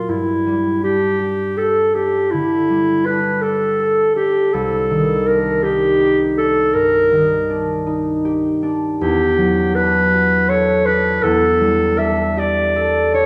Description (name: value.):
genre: classical, impressionist duo for clarinet and harp.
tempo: 54 BPM (dotted quarters).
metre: 12/8.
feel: rubato.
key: unclear.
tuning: A4 = 437 Hz.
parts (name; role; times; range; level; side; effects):
warm clarinet; melody; 0.0-13.3 s; E4 to E5; -18 LUFS; equal; none.
concert harp; accompaniment; 0.0-13.3 s; C2 to Bb4; -21 LUFS; equal; none.
room: wet recital hall reverb, RT60 1.5 s.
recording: heard from further back in the room.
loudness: -17 LUFS.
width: mono.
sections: 0.0-13.3 A section.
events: none.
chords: 0.1 Gsus2; 4.5 Cm9; 9.0 Em11; 11.2 Gsus2/E.